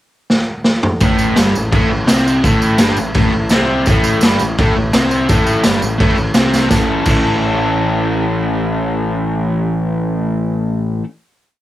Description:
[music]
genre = garage rock duo or trio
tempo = 169 BPM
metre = 4/4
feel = straight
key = unclear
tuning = A4 = 442 Hz
[part]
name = raw garage drum kit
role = drums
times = 0.3-7.2 s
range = crash cymbal, kick drum, snare drum, toms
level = -14 LUFS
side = equal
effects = cassette tape
[part]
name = raw garage guitar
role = riff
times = 1.0-11.0 s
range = G2 to A4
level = -15 LUFS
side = left 1 dB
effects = overdrive, cassette tape
[part]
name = growling picked electric bass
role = bass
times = 1.0-11.0 s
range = G1 to C2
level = -22 LUFS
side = equal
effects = overdrive, tube saturation
[part]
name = tambourine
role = percussion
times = 1.0-7.2 s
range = none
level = -28 LUFS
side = right 3 dB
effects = none
[sound]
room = light reverb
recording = home recording on cassette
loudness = -12 LUFS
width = side -14 dB against mid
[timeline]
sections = 0.0-1.0 pickup bar; 1.0-6.7 riff; 6.7-9.5 final chord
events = drum fill 0.3-1.0, 6.5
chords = 0.0 N.C.; 1.0 Gsus24; 6.7 A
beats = 0.29 0.65 | 1.00 1.36 1.72 2.08 | 2.44 2.79 3.15 3.51 | 3.87 4.22 4.58 4.93 | 5.29 5.64 6.00 6.35 | 6.70 7.06 7.41 7.76 | 8.12 8.47 8.82 9.18

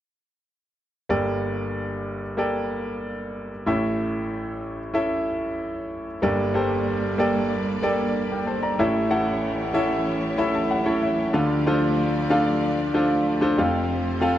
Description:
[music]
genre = pop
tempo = 94 BPM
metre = 4/4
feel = straight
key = unclear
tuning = A4 = 445 Hz
[part]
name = bright grand piano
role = accompaniment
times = 1.1-14.4 s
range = F1 to B5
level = -22 LUFS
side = equal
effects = none
[part]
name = warm studio string section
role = sustained chords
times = 6.2-14.4 s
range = E3 to D5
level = -29 LUFS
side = right 2 dB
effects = none
[sound]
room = moderate large studio reverb, RT60 0.8 s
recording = dark, warm production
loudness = -21 LUFS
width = side -12 dB against mid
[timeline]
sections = 1.1-6.2 A section; 6.2-14.4 B section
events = grand piano fill 10.1-11.3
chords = 1.1 Gmadd9; 3.7 A; 6.2 Gmadd9; 8.8 A; 11.3 Dm; 13.6 F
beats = | 1.10 1.74 2.38 3.02 | 3.67 4.30 4.95 5.58 | 6.22 6.87 7.50 8.14 | 8.78 9.42 10.06 10.70 | 11.34 11.98 12.62 13.26 | 13.90

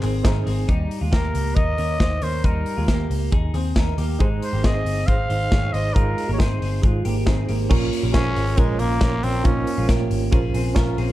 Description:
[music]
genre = jangly indie pop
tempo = 137 BPM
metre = 4/4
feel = straight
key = Bb dorian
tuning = A4 = 441 Hz
[part]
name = reed electric piano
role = accompaniment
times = 0.0-0.7, 4.2-11.1 s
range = C4 to Eb5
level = -28 LUFS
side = right 5 dB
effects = fast tremolo
[part]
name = twelve-string electric guitar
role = arpeggios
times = 0.0-11.1 s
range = G3 to Db5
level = -28 LUFS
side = equal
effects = slapback echo
[part]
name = vintage muted picked electric bass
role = bass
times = 0.0-11.1 s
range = G1 to Eb2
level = -23 LUFS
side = equal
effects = none
[part]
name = modern studio drum kit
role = drums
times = 0.0-11.1 s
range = crash cymbal, hi-hat, kick drum, ride cymbal, snare drum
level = -22 LUFS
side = equal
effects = none
[part]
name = growling trumpet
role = melody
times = 1.1-9.9 s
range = Ab3 to F5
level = -26 LUFS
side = equal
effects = none
[sound]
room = light reverb, studio reverb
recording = dark, warm production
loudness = -18 LUFS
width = side -15 dB against mid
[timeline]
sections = 0.7-7.7 A section; 7.7-11.1 B section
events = none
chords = 0.0 Ab; 0.7 Eb; 4.2 Ab; 7.7 Bbm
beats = 0.25 | 0.69 1.13 1.57 2.01 | 2.45 2.89 3.33 3.77 | 4.20 4.64 5.08 5.52 | 5.96 6.40 6.83 7.27 | 7.71 8.14 8.58 9.02 | 9.45 9.89 10.32 10.76

